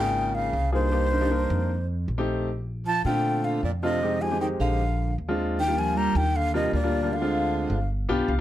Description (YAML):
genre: jazz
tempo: 155 BPM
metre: 4/4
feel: straight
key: Bb major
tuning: A4 = 440 Hz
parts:
  - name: breathy mellow silver concert flute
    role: melody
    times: 0.0-7.9 s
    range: C5 to Bb5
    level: -27 LUFS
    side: left 1 dB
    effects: plate reverb
  - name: breathy baritone saxophone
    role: second line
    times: 0.0-7.9 s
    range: G2 to G3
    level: -30 LUFS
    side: right 5 dB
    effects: none
  - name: clear concert grand piano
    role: accompaniment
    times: 0.0-8.4 s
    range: G3 to G5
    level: -28 LUFS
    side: left 2 dB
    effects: none
  - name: upright bass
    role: bass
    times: 0.0-8.4 s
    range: G1 to Bb2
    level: -27 LUFS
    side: equal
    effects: none
room: light reverb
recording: dark, warm production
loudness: -23 LUFS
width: side -13 dB against mid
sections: 0.0-5.6 A section; 5.6-8.4 B section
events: grand piano fill 7.9-8.4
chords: 0.0 Db6; 0.9 Cm7; 1.7 F9; 2.5 Bbmaj9; 4.0 Fm7; 4.8 Bb7; 5.6 Ebmaj7; 7.1 Dm7b5; 7.9 G7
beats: 0.15 0.54 | 0.93 1.31 1.70 2.09 | 2.48 2.86 3.25 3.64 | 4.02 4.41 4.80 5.19 | 5.57 5.96 6.35 6.73 | 7.12 7.51 7.90 8.28